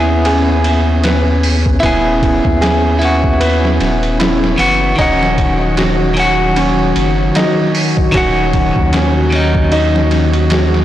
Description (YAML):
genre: trip hop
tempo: 76 BPM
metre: 4/4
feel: swing 57% on 16ths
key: Eb phrygian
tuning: A4 = 440 Hz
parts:
  - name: clean electric guitar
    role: accompaniment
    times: 0.0-10.8 s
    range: Eb3 to G#4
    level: -15 LUFS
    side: left 1 dB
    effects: tremolo, tape echo
  - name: warbly tape-like pad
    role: sustained chords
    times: 0.0-10.8 s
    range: Gb3 to Gb4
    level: -20 LUFS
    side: equal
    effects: chorus, built-in reverb, vintage 12-bit sampler grit
  - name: felt-muted upright piano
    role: arpeggios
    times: 0.0-10.8 s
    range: Db4 to B4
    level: -19 LUFS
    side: right 2 dB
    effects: tape echo
  - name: round analog bass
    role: bass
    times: 0.0-10.8 s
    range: Eb1 to Eb2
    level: -16 LUFS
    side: equal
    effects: none
  - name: trip hop sampler-style drum kit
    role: drums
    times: 0.2-10.8 s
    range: hi-hat, kick drum, ride cymbal, snare drum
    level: -18 LUFS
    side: equal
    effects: overdrive
room: light reverb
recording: blown-out, overdriven recording, overdrive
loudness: -10 LUFS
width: side -12 dB against mid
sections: 0.0-10.8 A section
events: none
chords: 0.0 E/Eb; 5.0 Ebm7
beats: 0.25 1.04 | 1.82 2.62 3.40 4.19 | 4.98 5.77 6.56 7.35 | 8.14 8.93 9.72 10.51